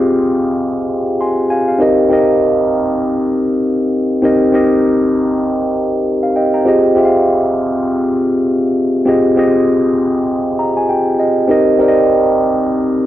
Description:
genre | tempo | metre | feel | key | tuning
soul | 99 BPM | 4/4 | swing 58% on 16ths | F minor | A4 = 440 Hz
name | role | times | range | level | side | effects
mellow tine electric piano | solo | 0.0-13.1 s | C4 to C6 | -12 LUFS | equal | tube saturation, phaser
room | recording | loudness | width
light reverb | nothing above 10.5 kHz | -12 LUFS | side -13 dB against mid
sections
0.0-13.1 A section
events
tine electric piano fill 10.3-11.5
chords
0.0 Fm9; 1.8 Cm7; 6.7 Fm9; 11.5 Cm7

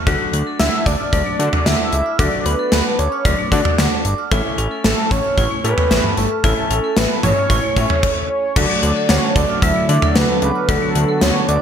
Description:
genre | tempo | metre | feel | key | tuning
synth-pop | 113 BPM | 4/4 | straight | D major | A4 = 440 Hz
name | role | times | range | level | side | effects
vibraphone with hard mallets | arpeggios | 0.0-11.6 s | F#3 to F6 | -25 LUFS | right 1 dB | digital delay
clear concert grand piano | accompaniment | 0.1-11.6 s | A3 to G4 | -26 LUFS | left 3 dB | wide subtle chorus
fat analog bass | bass | 0.1-11.6 s | G1 to D3 | -19 LUFS | equal | none
gated 80s drum kit | drums | 0.1-11.6 s | crash cymbal, hi-hat, kick drum, snare drum, toms | -18 LUFS | equal | none
fat analog lead | melody | 0.6-11.6 s | A4 to E5 | -20 LUFS | equal | chorus
warm analog pad | sustained chords | 8.6-11.6 s | D3 to F#4 | -22 LUFS | right 1 dB | chorus
room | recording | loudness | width
moderate plate reverb, RT60 2.1 s | bright 1980s-style digital production | -14 LUFS | side -8 dB against mid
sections
0.0-8.6 A section; 8.6-11.6 B section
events
stop 8.0-8.6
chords
0.1 D; 4.3 A; 8.6 D

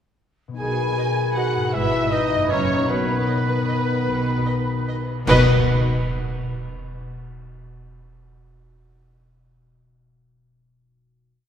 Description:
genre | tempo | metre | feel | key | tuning
classical, orchestral ballroom waltz | 140-169 BPM | 3/4 | rubato | B major | A4 = 440 Hz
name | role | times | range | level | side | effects
concert harp | arpeggios | 0.5-5.5 s | F#2 to D#5 | -27 LUFS | left 3 dB | none
warm symphonic violin section | melody | 0.6-5.5 s | B4 to G#5 | -28 LUFS | left 2 dB | none
clear oboe | second line | 0.6-5.4 s | B4 to G#5 | -29 LUFS | right 3 dB | none
mellow flute section | second line | 0.6-5.5 s | A#5 to B5 | -32 LUFS | left 1 dB | none
warm clarinet | second line | 0.6-5.4 s | B3 to B4 | -32 LUFS | right 1 dB | none
warm symphonic violin section | second line | 0.6-5.5 s | B4 to G#5 | -31 LUFS | left 1 dB | none
warm bassoon | accompaniment | 0.6-5.4 s | D#3 to E3 | -30 LUFS | right 1 dB | none
dark French horn section | sustained chords | 0.6-5.4 s | B3 to G#4 | -27 LUFS | left 3 dB | none
rich symphonic cello section | bass | 0.6-5.5 s | F#2 to B2 | -28 LUFS | right 1 dB | none
warm symphonic double bass section | bass | 0.6-5.5 s | F#1 to B1 | -27 LUFS | equal | none
clear studio viola section | accompaniment | 1.0-5.5 s | A#4 to E5 | -30 LUFS | right 2 dB | none
cymbal swell, clash cymbals and concert bass drum | percussion | 2.9-6.1 s | none | -29 LUFS | right 1 dB | none
room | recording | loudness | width
wet church reverb, RT60 2.8 s | recorded in a church or concert hall | -19 LUFS | side -9 dB against mid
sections
0.6-5.3 A section; 5.3-6.5 final chord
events
slowing down 2.3-5.3; band accent 5.3-5.7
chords
0.6 B; 1.7 E/G#; 2.5 F#7; 2.9 B

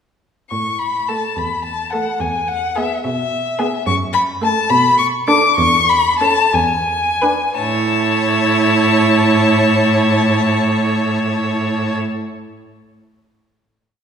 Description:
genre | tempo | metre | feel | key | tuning
quick classical-period movement for string quartet | 56-74 BPM (dotted quarters) | 6/8 | rubato | A major | A4 = 440 Hz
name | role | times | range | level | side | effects
warm violin | melody | 0.5-11.9 s | E5 to D6 | -16 LUFS | left 4 dB | none
warm cello | bass | 0.5-11.9 s | E2 to B2 | -20 LUFS | right 2 dB | none
rich violin | second line | 1.1-11.9 s | G#4 to C#5 | -22 LUFS | equal | none
warm viola | accompaniment | 1.1-11.9 s | A3 to E4 | -22 LUFS | right 5 dB | none
room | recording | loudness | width
wet recital hall reverb, RT60 1.7 s | recorded in a church or concert hall | -14 LUFS | side -7 dB against mid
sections
0.5-7.6 A section; 7.6-11.7 final chord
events
slowing down 3.0-7.6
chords
0.5 A5; 2.2 E; 3.9 F#m; 4.7 Bm7; 5.6 A/E; 6.5 E7; 7.6 A

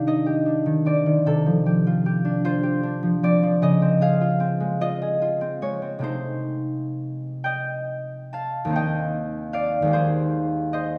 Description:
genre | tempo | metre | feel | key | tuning
classical, solo harp piece | 42-52 BPM (dotted quarters) | 6/8 | rubato | C dorian | A4 = 440 Hz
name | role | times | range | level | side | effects
concert harp | solo | 0.0-11.0 s | Eb2 to A5 | -23 LUFS | equal | none
room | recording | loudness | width
wet recital hall reverb, RT60 1.6 s | heard from further back in the room | -23 LUFS | mono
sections
0.0-8.7 A section; 8.7-11.0 B section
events
none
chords
0.0 Cmadd9; 1.3 F13/C; 3.6 Dbmaj7; 6.0 Cm6; 8.7 Eb6; 9.9 Abmaj9/Eb

